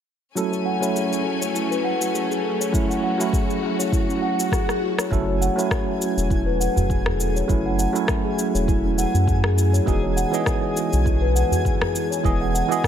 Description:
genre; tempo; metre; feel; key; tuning
organic downtempo; 101 BPM; 4/4; swing 55% on 16ths; F# dorian; A4 = 441 Hz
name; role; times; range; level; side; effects
bell-like tine electric piano; accompaniment; 0.4-12.9 s; E3 to D#5; -25 LUFS; right 3 dB; medium stereo tremolo, sidechain pumping, low-pass filter, ping-pong delay, shimmer reverb
rich symphonic string section; sustained chords; 0.4-5.1 s; F#3 to G#5; -31 LUFS; left 3 dB; sidechain pumping, shimmer reverb
steel tongue drum; arpeggios; 0.4-12.9 s; C#4 to F#5; -25 LUFS; left 1 dB; low-pass filter, ping-pong delay, shimmer reverb
electronic shaker and rim click; drums; 0.4-12.9 s; none; -28 LUFS; left 1 dB; none
electronic kick drum; drums; 2.7-12.9 s; none; -24 LUFS; equal; none
swell; sound effects; 4.1-5.1 s; none; -31 LUFS; left 2 dB; none
round analog bass; bass; 5.1-12.6 s; E1 to F#2; -22 LUFS; equal; sidechain pumping
twinkling granular texture; texture; 5.4-12.9 s; G#4 to G#5; -33 LUFS; equal; built-in reverb, shimmer reverb
udu; percussion; 6.8-7.2, 11.5-11.9 s; none; -26 LUFS; equal; none
room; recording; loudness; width
light reverb, digital ambience; none; -19 LUFS; side -9 dB against mid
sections
0.4-5.1 A section; 5.1-12.9 B section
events
filter sweep on steel tongue drum 0.4-5.1; swell 4.1-5.1; drum fill 4.5-5.1; filter sweep on tine electric piano 5.1-12.9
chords
0.4 F#m7; 9.9 Emaj7

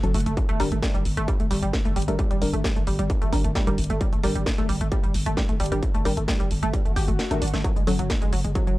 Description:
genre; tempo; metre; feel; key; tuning
driving peak-time techno; 132 BPM; 4/4; straight; unclear; A4 = 440 Hz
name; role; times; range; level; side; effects
filtered dub chord stab; stabs; 0.0-8.0 s; F#3 to Bb4; -31 LUFS; left 2 dB; chorus, sidechain pumping, tape echo
growling 808-style bass; bass; 0.0-8.8 s; F#1 to G1; -27 LUFS; equal; sidechain pumping, low-pass filter
techno drum kit; drums; 0.0-8.8 s; hi-hat, snare drum; -32 LUFS; equal; sidechain pumping on hats
tight sequenced synth; riff; 0.1-8.8 s; F#3 to G4; -29 LUFS; right 1 dB; chorus, sidechain pumping, tape echo
electronic kick drum; drums; 0.4-8.6 s; none; -24 LUFS; equal; distortion
swell; sound effects; 6.9-7.6 s; none; -36 LUFS; left 3 dB; none
room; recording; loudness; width
digital ambience; dry, gritty hardware recording, cassette tape; -21 LUFS; side -18 dB against mid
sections
0.0-8.8 A section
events
swell 6.9-7.6; kick drops out 7.2-7.6; drum fill 7.2-7.6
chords
0.4 Gm; 7.6 F#m

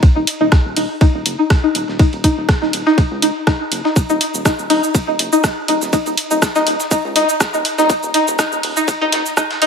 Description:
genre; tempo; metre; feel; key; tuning
minimal techno; 122 BPM; 4/4; swing 54% on 16ths; Eb minor; A4 = 440 Hz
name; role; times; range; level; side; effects
breakbeat sampler-style drum kit; drums; 0.0-9.7 s; hi-hat, ride cymbal, snare drum; -29 LUFS; right 2 dB; high-pass filter on cymbals, high-pass filter on snare, high-pass filter on hats, analog delay
electronic kick drum; drums; 0.0-9.5 s; none; -13 LUFS; equal; none
string-like resonator pluck; riff; 0.2-9.7 s; Eb4; -16 LUFS; left 1 dB; chorus, phaser, sidechain pumping, dub echo
rubbery square bass; bass; 0.2-9.7 s; Eb1 to Db2; -28 LUFS; equal; tube saturation, sidechain pumping, high-pass filter
garage drum kit; drums; 0.3-9.7 s; cabasa, hi-hat, rim click; -20 LUFS; right 1 dB; high-pass filter on hats, high-pass filter on snare, high-pass filter on perc, analog delay
room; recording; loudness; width
wet plate reverb, RT60 1.8 s, digital ambience; echo-heavy mix, high-pass filter; -13 LUFS; side -6 dB against mid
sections
0.0-9.7 A section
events
build-up 0.0-9.7; filter sweep on synth pluck 0.0-9.7; filter sweep 0.0-9.7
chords
none

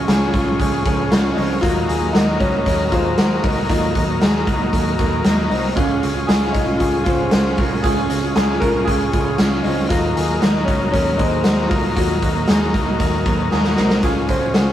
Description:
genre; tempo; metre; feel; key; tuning
jangly indie pop; 116 BPM; 4/4; straight; Db major; A4 = 440 Hz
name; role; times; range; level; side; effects
clear upright piano; melody; 0.0-14.7 s; Db4 to C5; -24 LUFS; left 1 dB; none
combo organ; accompaniment; 0.0-14.7 s; Gb3 to Db5; -24 LUFS; left 3 dB; none
fingerpicked plugged-in steel-string acoustic guitar; accompaniment; 0.0-14.7 s; Db3 to F4; -25 LUFS; right 5 dB; none
electric guitar through a small old amp; arpeggios; 0.0-14.7 s; Bb3 to C5; -26 LUFS; left 2 dB; none
vintage muted picked electric bass; bass; 0.0-14.7 s; C2 to Eb2; -25 LUFS; equal; none
raw garage drum kit; drums; 0.1-14.7 s; hi-hat, kick drum, snare drum; -18 LUFS; equal; none
room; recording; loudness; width
light reverb; rough rehearsal-room recording; -15 LUFS; side -11 dB against mid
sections
0.0-14.0 A section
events
drum fill 13.5-14.0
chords
0.0 Db; 14.0 Dbadd9

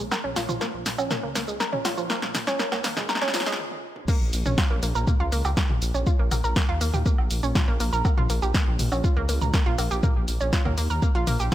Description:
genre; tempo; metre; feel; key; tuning
melodic techno; 121 BPM; 4/4; straight; Bb dorian; A4 = 439 Hz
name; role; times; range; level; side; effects
analog pluck; arpeggios; 0.0-11.5 s; F3 to Bb4; -28 LUFS; right 1 dB; chorus, cassette tape, sidechain pumping, dub echo
dark detuned saw bass; bass; 0.0-11.5 s; Bb1 to Eb2; -26 LUFS; equal; sidechain pumping
deep house drum kit; drums; 0.1-11.5 s; crash cymbal, hi-hat, shaker, snare drum, toms, woodblock; -28 LUFS; equal; none
electronic kick drum; drums; 4.1-11.5 s; none; -22 LUFS; equal; none
room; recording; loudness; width
light reverb, digital ambience; high-pass filter; -22 LUFS; side -13 dB against mid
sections
0.0-4.1 A section; 4.1-11.5 B section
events
build-up 0.0-4.1; drum fill 0.0-3.6, 3.6-4.1; filter sweep on synth arpeggio sound 0.0-4.1; stop 3.6-4.1; drop 4.1-11.5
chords
0.0 Bbm

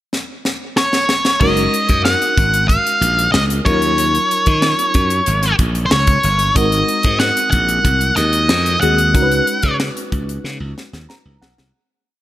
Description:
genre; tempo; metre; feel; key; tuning
polished 1980s jazz-funk pop; 93 BPM; 4/4; straight; F# major; A4 = 440 Hz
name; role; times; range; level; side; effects
tight funk drum kit; drums; 0.1-11.7 s; crash cymbal, hi-hat, kick drum, snare drum; -18 LUFS; equal; none
octave-fuzz lead guitar; melody; 0.8-9.7 s; B#4 to F#5; -16 LUFS; equal; distortion, slapback echo
bell-like FM electric piano; accompaniment; 1.4-11.8 s; F#3 to A#5; -22 LUFS; left 1 dB; tremolo, analog chorus, slapback echo
glassy slap bass; bass; 1.4-11.7 s; F#1 to D#3; -19 LUFS; equal; none
room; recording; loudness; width
light reverb, small room ambience; none; -13 LUFS; side -14 dB against mid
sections
0.0-1.4 pickup bar; 1.4-11.7 verse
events
drum fill 0.1-1.4, 10.4-11.7; fade-out 9.2-11.7; FM electric piano fill 10.8-11.7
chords
0.0 N.C.; 1.4 F#6; 3.7 D#m7; 6.6 G#7; 9.2 C#7sus4

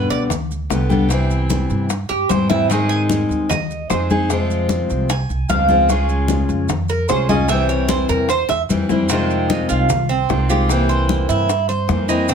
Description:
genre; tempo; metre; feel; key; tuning
latin, Cuban son and guajira; 150 BPM; 4/4; straight; F minor; A4 = 438 Hz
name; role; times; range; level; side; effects
picked steel-string acoustic guitar; accompaniment; 0.0-12.3 s; B2 to Ab4; -20 LUFS; left 3 dB; none
Cuban tres; arpeggios; 0.0-12.3 s; C4 to Ab5; -20 LUFS; right 4 dB; none
upright bass; bass; 0.0-12.3 s; C2 to Ab2; -21 LUFS; right 2 dB; none
bongos; percussion; 0.1-12.3 s; none; -27 LUFS; left 8 dB; none
congas; percussion; 0.1-12.3 s; none; -25 LUFS; left 3 dB; none
maracas; percussion; 0.1-12.3 s; none; -31 LUFS; right 6 dB; none
room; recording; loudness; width
light reverb; none; -15 LUFS; side -6 dB against mid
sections
0.0-9.1 A section; 9.1-12.3 B section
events
Cuban tres solo 0.0-9.1; drum fill 2.5, 8.5-9.1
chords
0.0 G; 1.1 C; 2.7 Ab; 4.3 Fm; 7.5 C; 9.1 Fm7; 10.7 C7

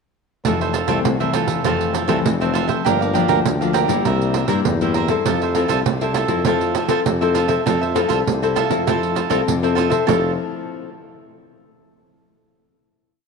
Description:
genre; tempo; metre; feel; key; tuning
samba and choro; 100 BPM; 4/4; straight; F major; A4 = 440 Hz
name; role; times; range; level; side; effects
cavaquinho; accompaniment; 0.4-10.3 s; F4 to F5; -22 LUFS; right 10 dB; none
warm tuba; bass; 0.4-10.4 s; F1 to G2; -24 LUFS; left 1 dB; none
pandeiro; percussion; 0.4-10.2 s; none; -23 LUFS; right 8 dB; none
nylon-string guitar; accompaniment; 0.5-10.9 s; F2 to A4; -21 LUFS; left 10 dB; none
room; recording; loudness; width
wet plate reverb, RT60 3.1 s; 1960s-style stereo with parts hard left and right; -16 LUFS; side -4 dB against mid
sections
0.4-10.1 A section; 10.1-12.5 final chord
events
none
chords
0.4 Fmaj7; 2.9 Gm7; 4.1 C7; 5.3 Fmaj7

